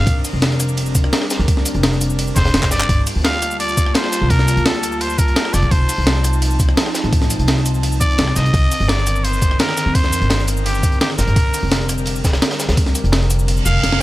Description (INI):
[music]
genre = liquid drum and bass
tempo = 170 BPM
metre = 4/4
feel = straight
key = G minor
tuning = A4 = 440 Hz
[part]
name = trumpet with straight mute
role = melody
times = 0.0-0.2, 2.4-14.0 s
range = G4 to F5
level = -23 LUFS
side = equal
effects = ping-pong delay
[part]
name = airy breathy pad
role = sustained chords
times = 0.0-14.0 s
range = D3 to A5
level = -25 LUFS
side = equal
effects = chorus, sidechain pumping
[part]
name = upright bass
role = bass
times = 0.0-14.0 s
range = F1 to F2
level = -18 LUFS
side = equal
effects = none
[part]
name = breakbeat sampler-style drum kit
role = drums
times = 0.1-14.0 s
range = handclaps, hi-hat, ride cymbal, rim click, shaker, snare drum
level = -21 LUFS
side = equal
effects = none
[part]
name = crunchy breakbeat drum kit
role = drums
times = 0.1-14.0 s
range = hi-hat, snare drum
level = -27 LUFS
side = equal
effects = high-pass filter on hats, high-pass filter on snare, high-pass filter on room
[part]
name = electronic kick drum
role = drums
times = 0.1-12.8 s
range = none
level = -16 LUFS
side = equal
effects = none
[part]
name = reverse cymbal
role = sound effects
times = 13.6-14.0 s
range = none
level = -23 LUFS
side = right 5 dB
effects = none
[sound]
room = small room ambience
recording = none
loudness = -14 LUFS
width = side -16 dB against mid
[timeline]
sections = 0.0-2.9 A section; 2.9-14.0 A section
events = drop 0.0-2.9, 2.9-14.0; drum fill 2.6, 13.8; kick drops out 13.5-14.0; reverse cymbal 13.6-14.0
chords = 0.1 Bb69; 2.9 Gm9; 5.5 F7; 8.4 Cm9; 11.4 Bb69